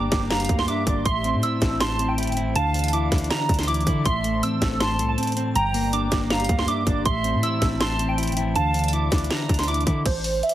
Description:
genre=hip hop, trap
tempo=160 BPM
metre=4/4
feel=half-time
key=A phrygian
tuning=A4 = 440 Hz
part: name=glassy digital keys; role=melody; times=0.0-10.5 s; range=C5 to E6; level=-26 LUFS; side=right 2 dB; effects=chorus, low-pass filter
part: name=mellow electric guitar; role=accompaniment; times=0.0-10.1 s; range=G2 to E4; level=-26 LUFS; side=left 1 dB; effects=wide subtle chorus, low-pass filter
part: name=glassy FM pad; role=sustained chords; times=0.0-10.0 s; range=E3 to Bb5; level=-34 LUFS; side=equal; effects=ensemble chorus, built-in reverb
part: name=long sustained 808-style bass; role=bass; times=0.0-10.4 s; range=G1 to D3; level=-27 LUFS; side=equal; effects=none
part: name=trap drum kit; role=drums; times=0.1-10.5 s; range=crash cymbal, hi-hat, kick drum, snare drum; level=-25 LUFS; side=equal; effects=none
part: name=concert flute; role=second line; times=0.3-8.9 s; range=D5 to A5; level=-32 LUFS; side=right 2 dB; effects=tape echo
room=light reverb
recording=heavily compressed radio sound, multiband compression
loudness=-20 LUFS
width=side -13 dB against mid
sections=0.0-10.1 A section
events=none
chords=0.0 Gm; 1.1 Am; 2.6 Dmadd9; 4.1 Am; 5.6 Gm; 7.1 Am; 8.6 Dmadd9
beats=0.31 0.68 | 1.06 1.43 1.81 2.18 | 2.56 2.93 3.31 3.68 | 4.06 4.43 4.81 5.18 | 5.56 5.93 6.31 6.68 | 7.06 7.43 7.81 8.18 | 8.56 8.93 9.31 9.68 | 10.06 10.43

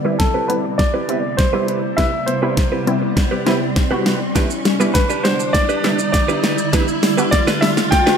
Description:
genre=dance-pop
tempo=101 BPM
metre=4/4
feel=straight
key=E minor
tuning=A4 = 442 Hz
part: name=wide unison pluck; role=accompaniment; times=0.0-8.0 s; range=G3 to F#4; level=-23 LUFS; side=equal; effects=sidechain pumping, low-pass filter
part: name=ethereal airy pad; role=sustained chords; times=0.0-8.2 s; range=C3 to D5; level=-24 LUFS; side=equal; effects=ensemble chorus, built-in reverb, sidechain pumping, low-pass filter
part: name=soft round pluck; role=arpeggios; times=0.0-8.2 s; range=C3 to D4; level=-28 LUFS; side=left 3 dB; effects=none
part: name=direct-recorded clean electric guitar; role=riff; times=0.0-8.2 s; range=D4 to B4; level=-25 LUFS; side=right 5 dB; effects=wide subtle chorus, low-pass filter
part: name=riser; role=sound effects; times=0.0-8.2 s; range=none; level=-26 LUFS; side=right 1 dB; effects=none
part: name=clear grand piano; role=melody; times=0.2-8.2 s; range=A4 to G5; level=-21 LUFS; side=equal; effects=low-pass filter
part: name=smooth R&B drum kit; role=drums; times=0.2-8.2 s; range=hi-hat, kick drum, shaker, snare drum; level=-18 LUFS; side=equal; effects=none
room=moderate lush hall reverb, RT60 1.7 s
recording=bright 1980s-style digital production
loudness=-15 LUFS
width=side -7 dB against mid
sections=0.0-8.2 A section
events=build-up 0.0-8.2; drum fill 0.0-8.2; riser 0.0-8.2; filter sweep 0.0-8.2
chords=0.0 Cmaj7; 4.4 Em7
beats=0.20 0.79 1.39 | 1.98 2.58 3.17 3.76 | 4.36 4.95 5.54 6.14 | 6.73 7.33 7.92

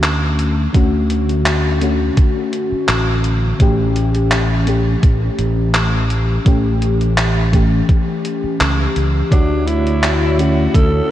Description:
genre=vaporwave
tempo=84 BPM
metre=4/4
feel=swing 53% on 16ths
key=D major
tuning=A4 = 444 Hz
part: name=FM electric piano with soft pad layer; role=accompaniment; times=0.0-11.1 s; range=D3 to C#5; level=-19 LUFS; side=left 2 dB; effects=lush chorus, cassette tape, diffuse ambient delay
part: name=modern bright fingered electric bass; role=bass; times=0.0-11.0 s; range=A1 to D2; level=-17 LUFS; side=equal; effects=tube saturation
part: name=gated 80s digital drum machine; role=drums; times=0.0-10.9 s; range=handclaps, hi-hat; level=-22 LUFS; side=equal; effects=gated reverb, overdrive
part: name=electronic kick drum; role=drums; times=0.7-10.9 s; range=none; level=-13 LUFS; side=equal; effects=none
part: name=growling alto saxophone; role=melody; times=9.3-11.1 s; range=D4 to A4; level=-19 LUFS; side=right 1 dB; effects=diffuse ambient delay
room=moderate huge ambient reverb, RT60 4.3 s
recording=dreamy mix soaked in reverb, cassette tape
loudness=-13 LUFS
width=side -12 dB against mid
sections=0.0-11.1 A section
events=none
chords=0.0 Dmaj7; 3.6 A7; 9.3 Dmaj7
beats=0.03 | 0.75 1.46 2.18 2.89 | 3.60 4.32 5.03 5.75 | 6.46 7.18 7.89 8.61 | 9.32 10.03 10.75

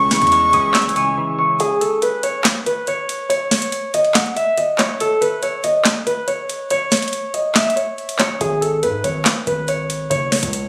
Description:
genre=hip hop, trap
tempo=141 BPM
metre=4/4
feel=half-time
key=C# minor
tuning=A4 = 436 Hz
part: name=dark grand piano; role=melody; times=0.0-10.7 s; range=G#4 to E6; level=-21 LUFS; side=equal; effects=low-pass filter, tape echo
part: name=breathy silver concert flute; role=second line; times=0.0-1.2 s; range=G#5 to C#6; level=-20 LUFS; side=equal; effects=tape echo
part: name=semi-hollow electric guitar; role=accompaniment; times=0.0-1.6 s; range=C#3 to C#5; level=-27 LUFS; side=equal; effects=analog chorus, low-pass filter
part: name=airy breathy pad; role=sustained chords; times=0.0-1.6 s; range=G#3 to C#5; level=-35 LUFS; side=equal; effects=chorus
part: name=hard-hitting 808-style bass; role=bass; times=0.0-1.1, 8.4-10.7 s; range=F#1 to G#2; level=-28 LUFS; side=equal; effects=none
part: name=trap drum kit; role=drums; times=0.1-10.6 s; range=handclaps, hi-hat, snare drum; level=-21 LUFS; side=equal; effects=none
room=light reverb, digital ambience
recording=recorded on a phone in the room, studio reverb, compression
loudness=-18 LUFS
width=mono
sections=0.0-1.6 A section; 1.6-10.7 B section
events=break 1.2-1.6, 1.6-8.4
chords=0.0 C#m; 1.6 N.C.; 8.4 G#sus4; 10.1 F#5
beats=0.32 0.75 1.17 | 1.60 2.02 2.45 2.88 | 3.30 3.73 4.15 4.58 | 5.00 5.43 5.85 6.28 | 6.71 7.13 7.56 7.98 | 8.41 8.83 9.26 9.68 | 10.11 10.54

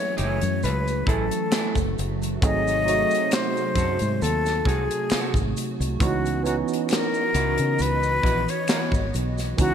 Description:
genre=R&B, neo-soul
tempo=67 BPM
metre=4/4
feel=swing 54% on 16ths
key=unclear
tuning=A4 = 439 Hz
part: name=breathy concert flute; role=melody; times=0.0-9.7 s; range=F#4 to D#5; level=-26 LUFS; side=left 4 dB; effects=ping-pong delay
part: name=barky tine electric piano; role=accompaniment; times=0.0-9.7 s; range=E3 to B4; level=-29 LUFS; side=right 8 dB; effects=overdrive, phaser
part: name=hollow soft pad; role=sustained chords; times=0.0-9.7 s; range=B#2 to D#5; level=-31 LUFS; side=right 1 dB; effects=ensemble chorus
part: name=tight funk drum kit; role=drums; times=0.0-9.7 s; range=handclaps, hi-hat, kick drum, snare drum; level=-26 LUFS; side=left 1 dB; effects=gated reverb
part: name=electric guitar through a small old amp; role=second line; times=0.2-8.9 s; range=A3 to B4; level=-34 LUFS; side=right 7 dB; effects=none
part: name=fingered electric bass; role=bass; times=0.2-9.7 s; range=F#1 to C#3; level=-26 LUFS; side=equal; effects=none
part: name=maracas and finger snaps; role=percussion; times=0.2-9.7 s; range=none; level=-39 LUFS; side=right 2 dB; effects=none
room=light reverb, studio reverb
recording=bright 1980s-style digital production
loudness=-21 LUFS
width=side -8 dB against mid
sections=0.0-9.7 A section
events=none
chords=0.0 F#m9; 2.4 G#7b9; 6.0 C#m11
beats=0.63 1.52 | 2.42 3.31 4.21 5.11 | 6.00 6.90 7.79 8.69 | 9.58

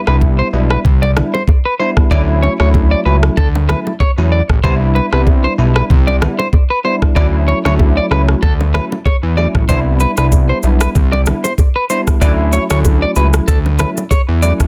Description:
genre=afrobeats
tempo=95 BPM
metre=4/4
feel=swing 55% on 16ths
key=D major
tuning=A4 = 441 Hz
part: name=bell-like tine electric piano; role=accompaniment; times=0.0-14.7 s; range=F#3 to E4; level=-21 LUFS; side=equal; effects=ensemble chorus
part: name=electric guitar at the edge of break-up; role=riff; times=0.1-14.5 s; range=A4 to D5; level=-21 LUFS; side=equal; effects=tape echo
part: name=fat analog bass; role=bass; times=0.1-14.7 s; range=A1 to E2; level=-16 LUFS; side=equal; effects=none
part: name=afro-pop drum kit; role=drums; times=0.1-14.7 s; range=kick drum, rim click, shaker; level=-15 LUFS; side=equal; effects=soft clipping on snare
part: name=bongos and congas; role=percussion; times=0.2-14.3 s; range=none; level=-25 LUFS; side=equal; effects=none
room=light reverb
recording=dense, heavily limited modern master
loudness=-13 LUFS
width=mono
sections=0.0-14.7 A section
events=break 0.0-9.7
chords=0.0 Cmaj7; 2.1 Dmaj7; 4.6 Cmaj7; 7.2 Dmaj7; 9.7 Cmaj7; 12.2 Dmaj7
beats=0.21 0.85 1.48 | 2.11 2.74 3.37 4.00 | 4.64 5.27 5.90 6.53 | 7.16 7.79 8.43 9.06 | 9.69 10.32 10.95 11.58 | 12.21 12.85 13.48 14.11

